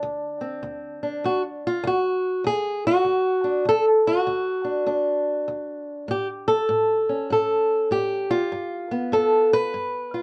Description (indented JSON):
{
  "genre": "acoustic country blues, solo or duo",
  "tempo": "99 BPM",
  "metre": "4/4",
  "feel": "swing 64% on 8ths",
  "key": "unclear",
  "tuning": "A4 = 440 Hz",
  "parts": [
    { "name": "fingerpicked old ladder-braced acoustic guitar", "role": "solo", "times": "0.0-10.2 s", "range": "D2 to B4", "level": "-23 LUFS", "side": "equal", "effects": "none" }
  ],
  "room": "light reverb",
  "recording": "worn, warbling old tape, cassette tape, warbly pitch drift",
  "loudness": "-23 LUFS",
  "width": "mono",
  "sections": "0.0-10.2 A section",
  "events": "none",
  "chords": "0.0 D7; 6.1 A7; 8.5 G7"
}